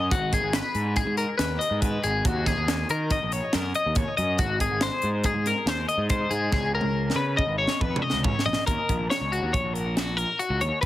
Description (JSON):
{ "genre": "math rock and midwest emo", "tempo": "140 BPM", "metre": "5/4", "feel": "straight", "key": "unclear", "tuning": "A4 = 439 Hz", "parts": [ { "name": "twelve-string electric guitar", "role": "arpeggios", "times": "0.0-10.9 s", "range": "F#4 to D#5", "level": "-26 LUFS", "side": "left 3 dB", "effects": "tremolo, analog delay" }, { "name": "fuzz picked electric bass", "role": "bass", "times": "0.0-10.9 s", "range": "G#1 to D#3", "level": "-28 LUFS", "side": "right 1 dB", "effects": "overdrive" }, { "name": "crisp fusion drum kit", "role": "drums", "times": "0.1-10.9 s", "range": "hi-hat, kick drum, snare drum, toms", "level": "-28 LUFS", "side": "right 1 dB", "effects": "none" } ], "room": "little or no reverb", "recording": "heavily compressed radio sound, multiband compression", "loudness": "-23 LUFS", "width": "side -14 dB against mid", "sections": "0.0-8.7 A section; 8.7-10.9 B section", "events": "drum fill 6.5-8.7", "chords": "0.1 G#m7; 2.2 D#m7; 4.4 G#; 6.5 C#7(no3); 8.7 D#m7" }